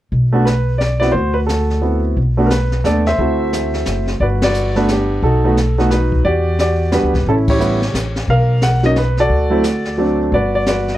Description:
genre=jazz piano trio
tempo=176 BPM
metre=3/4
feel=swing 63% on 8ths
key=unclear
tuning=A4 = 440 Hz
part: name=upright bass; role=bass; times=0.1-11.0 s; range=F#1 to E2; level=-17 LUFS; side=equal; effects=none
part: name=jazz brush drum kit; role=drums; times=0.1-11.0 s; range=brushed snare drum, hi-hat, kick drum, ride cymbal, snare drum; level=-24 LUFS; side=left 1 dB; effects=none
part: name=warm upright piano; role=melody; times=0.3-11.0 s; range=F#3 to F#5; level=-16 LUFS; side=right 1 dB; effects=none
room=light reverb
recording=worn, warbling old tape, cassette tape, warbly pitch drift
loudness=-13 LUFS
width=side -14 dB against mid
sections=0.1-4.2 A section; 4.2-11.0 B section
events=band accent 4.4, 7.4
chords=0.1 Bm; 1.1 D13; 2.2 Bm7; 3.2 D9; 4.2 Gmaj7; 5.2 B7; 6.2 Em9; 7.3 A7; 8.3 Bmaj7; 9.3 D7; 10.3 Gmaj7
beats=| 0.12 0.46 0.80 | 1.14 1.48 1.82 | 2.16 2.50 2.84 | 3.18 3.52 3.86 | 4.20 4.54 4.88 | 5.22 5.56 5.90 | 6.24 6.58 6.92 | 7.26 7.60 7.94 | 8.28 8.62 8.96 | 9.30 9.64 9.98 | 10.32 10.66

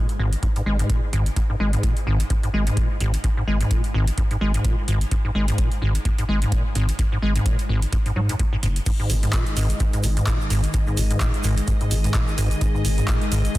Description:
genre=acid house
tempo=128 BPM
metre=4/4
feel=swing 57% on 16ths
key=unclear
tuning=A4 = 439 Hz
part: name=deep acid bass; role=riff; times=0.0-13.6 s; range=G#2 to G#3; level=-24 LUFS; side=equal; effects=overdrive, wide subtle chorus, dub echo
part: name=booming analog drum machine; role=drums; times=0.1-13.6 s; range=crash cymbal, handclaps, hi-hat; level=-30 LUFS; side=right 1 dB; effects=none
part: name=round analog bass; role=bass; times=0.2-13.5 s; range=F#1 to G#2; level=-22 LUFS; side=equal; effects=sidechain pumping
part: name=electronic kick drum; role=drums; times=0.4-13.6 s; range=none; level=-23 LUFS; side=equal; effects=none
part: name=string machine, full ensemble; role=sustained chords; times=8.9-13.6 s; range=D#3 to D#5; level=-29 LUFS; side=left 1 dB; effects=ensemble chorus, sidechain pumping
part: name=egg shaker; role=percussion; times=8.9-13.6 s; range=none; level=-37 LUFS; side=right 6 dB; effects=none
room=light reverb, digital ambience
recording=dense, heavily limited modern master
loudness=-19 LUFS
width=side -17 dB against mid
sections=0.0-13.6 A section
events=none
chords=0.0 G#5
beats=0.43 0.90 | 1.36 1.83 2.30 2.77 | 3.24 3.71 4.18 4.65 | 5.11 5.58 6.05 6.52 | 6.99 7.46 7.93 8.40 | 8.86 9.33 9.80 10.27 | 10.74 11.21 11.68 12.15 | 12.61 13.08 13.55

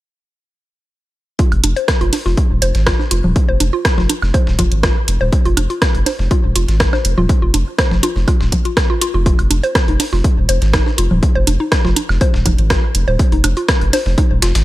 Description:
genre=minimal techno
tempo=122 BPM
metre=4/4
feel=straight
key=F minor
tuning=A4 = 441 Hz
part: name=mallet-like synth pluck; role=riff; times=1.4-14.5 s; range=Eb4 to C5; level=-22 LUFS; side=left 1 dB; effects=chorus, cassette tape, sidechain pumping, ping-pong delay
part: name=dusty soul sampler-style drum kit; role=drums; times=1.4-14.6 s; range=hi-hat, snare drum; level=-27 LUFS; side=left 1 dB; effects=sidechain pumping on hats, high-pass filter on hats, high-pass filter on snare
part: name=electronic kick drum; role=drums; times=1.4-14.3 s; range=none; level=-15 LUFS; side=equal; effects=overdrive
part: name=saturated sub bass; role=bass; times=1.5-14.6 s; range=Eb1 to Ab1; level=-16 LUFS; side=equal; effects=sidechain pumping
part: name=woodblock, bongos and congas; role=percussion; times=1.5-14.0 s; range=none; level=-22 LUFS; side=right 2 dB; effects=ping-pong delay
part: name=house drum kit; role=drums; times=1.6-14.6 s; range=hi-hat, rim click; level=-19 LUFS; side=right 1 dB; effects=overdrive
room=little or no reverb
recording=none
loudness=-12 LUFS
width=side -16 dB against mid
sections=1.4-14.6 A section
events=none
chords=none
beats=| 1.39 1.88 2.38 2.87 | 3.36 3.85 4.34 4.83 | 5.33 5.82 6.31 6.80 | 7.29 7.79 8.28 8.77 | 9.26 9.75 10.24 10.74 | 11.23 11.72 12.21 12.70 | 13.20 13.69 14.18

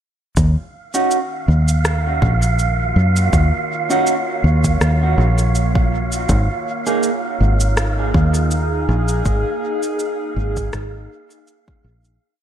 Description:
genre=ambient dub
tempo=81 BPM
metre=4/4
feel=swing 55% on 16ths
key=Eb minor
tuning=A4 = 439 Hz
part: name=warbly tape-like pad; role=sustained chords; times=1.4-12.2 s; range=Eb3 to Db5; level=-26 LUFS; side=equal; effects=chorus, built-in reverb, phaser
part: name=fingered electric bass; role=bass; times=0.4-12.2 s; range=Ab1 to Gb2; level=-16 LUFS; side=equal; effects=none
part: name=electronic kick drum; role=drums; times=0.4-11.8 s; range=none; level=-20 LUFS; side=equal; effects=overdrive, studio reverb
part: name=electronic shaker and rim click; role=drums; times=0.4-12.2 s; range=none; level=-25 LUFS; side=equal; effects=studio reverb, dub echo
part: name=wind-like tuned noise texture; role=texture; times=1.2-12.2 s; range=F5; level=-25 LUFS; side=right 4 dB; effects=built-in reverb
part: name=mellow electric guitar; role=stabs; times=0.9-7.1 s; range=Bb3 to Ab4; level=-22 LUFS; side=right 3 dB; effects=dub echo
room=light reverb, digital ambience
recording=none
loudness=-15 LUFS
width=side -10 dB against mid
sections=0.4-12.2 groove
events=fade-in on ambient pad 0.4-12.2; fade-out 8.3-12.2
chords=0.4 Ebm7; 6.3 Absus2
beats=| 0.36 1.10 1.85 2.59 | 3.33 4.07 4.81 5.55 | 6.29 7.03 7.77 8.51 | 9.25 9.99 10.73 11.47

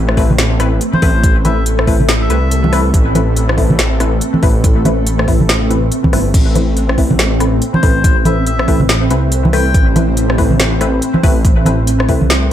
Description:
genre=deep dubstep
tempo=141 BPM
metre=4/4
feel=swing 60% on 16ths, half-time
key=A minor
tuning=A4 = 442 Hz
part: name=granular cloud pad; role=sustained chords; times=0.0-12.5 s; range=A3 to C5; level=-20 LUFS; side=right 1 dB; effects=built-in reverb
part: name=dark detuned saw bass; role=bass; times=0.0-12.5 s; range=G1 to C2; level=-15 LUFS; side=equal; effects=none
part: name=deep house drum kit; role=drums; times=0.1-12.4 s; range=crash cymbal, hi-hat, rim click, snare drum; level=-18 LUFS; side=equal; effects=studio reverb
part: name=filtered dub chord stab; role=stabs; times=0.2-12.2 s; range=A3 to B4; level=-20 LUFS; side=left 4 dB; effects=chorus, dub echo
part: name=electronic kick drum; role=drums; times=0.2-12.2 s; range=none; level=-13 LUFS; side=equal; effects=studio reverb
part: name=congas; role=percussion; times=0.3-12.3 s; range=none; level=-17 LUFS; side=right 1 dB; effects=none
part: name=melodica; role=melody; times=0.9-2.8, 7.7-9.9 s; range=C5 to G5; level=-22 LUFS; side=left 4 dB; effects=dub echo
room=light reverb, digital ambience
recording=dark, warm production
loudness=-10 LUFS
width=side -11 dB against mid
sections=0.0-12.5 A section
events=none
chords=0.0 Amadd9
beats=0.39 0.81 | 1.24 1.66 2.09 2.51 | 2.94 3.36 3.79 4.21 | 4.64 5.07 5.49 5.92 | 6.34 6.77 7.19 7.62 | 8.04 8.47 8.89 9.32 | 9.75 10.17 10.60 11.02 | 11.45 11.87 12.30

